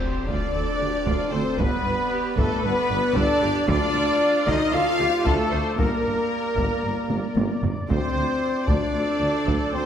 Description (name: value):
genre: cinematic, epic orchestral film score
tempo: 114 BPM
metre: 4/4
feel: straight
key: unclear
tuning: A4 = 438 Hz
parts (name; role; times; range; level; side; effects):
- clear studio violin section; melody; 0.0-9.9 s; A4 to F5; -34 LUFS; left 5 dB; none
- clear symphonic violin section; second line; 0.0-9.9 s; A4 to F5; -32 LUFS; left 4 dB; none
- hollow small flute group; second line; 0.0-9.9 s; A4 to F5; -31 LUFS; left 1 dB; none
- clear symphonic viola section; accompaniment; 0.0-9.9 s; F4 to C5; -32 LUFS; right 1 dB; none
- bright trombone section; sustained chords; 0.0-9.9 s; A3 to F4; -32 LUFS; right 3 dB; none
- clear woodwind section; sustained chords; 0.0-9.9 s; A3 to D5; -35 LUFS; equal; none
- warm French horn section; sustained chords; 0.0-9.9 s; A3 to F4; -27 LUFS; left 3 dB; none
- warm trumpet section; stabs; 0.0-9.9 s; A4 to F5; -30 LUFS; right 2 dB; none
- sub drop; sound effects; 0.0-1.6 s; none; -38 LUFS; left 1 dB; none
- rich symphonic cello section; bass; 0.3-9.8 s; D2 to D3; -33 LUFS; right 2 dB; none
- rich symphonic double bass section; bass; 0.3-9.8 s; G1 to D2; -31 LUFS; right 2 dB; none
- warm tuba; bass; 0.3-9.8 s; G1 to D2; -33 LUFS; right 2 dB; none
- taiko ensemble; drums; 0.3-9.9 s; none; -27 LUFS; equal; none
room: wet scoring stage reverb, RT60 1.8 s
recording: none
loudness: -20 LUFS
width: side -9 dB against mid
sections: 0.0-9.9 A section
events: impact 0.0-1.6; drum fill 7.1-7.9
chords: 0.0 Dm7; 1.6 G; 3.7 Dm7; 5.8 Gm; 7.9 Dm7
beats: 0.01 0.54 1.06 | 1.59 2.11 2.64 3.17 | 3.69 4.22 4.74 5.27 | 5.79 6.32 6.84 7.37 | 7.90 8.42 8.95 9.47